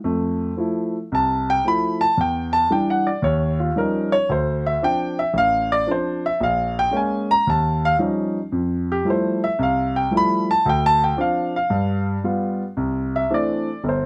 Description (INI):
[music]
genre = jazz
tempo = 113 BPM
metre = 4/4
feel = swing 68% on 8ths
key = unclear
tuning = A4 = 441 Hz
[part]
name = warm grand piano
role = solo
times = 0.0-14.1 s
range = G1 to B5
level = -21 LUFS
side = equal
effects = none
[sound]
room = light reverb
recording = close, detailed microphones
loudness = -21 LUFS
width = mono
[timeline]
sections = 0.0-12.8 A section; 12.8-14.1 A section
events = grand piano solo 0.0-12.8, 12.8-14.1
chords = 0.0 Fmaj7; 2.2 Em11; 3.2 Eb9; 4.3 Dm7; 6.4 Bbm7; 7.5 Eb9; 8.5 Fmaj9; 10.6 Dm7; 11.7 G7; 12.8 C69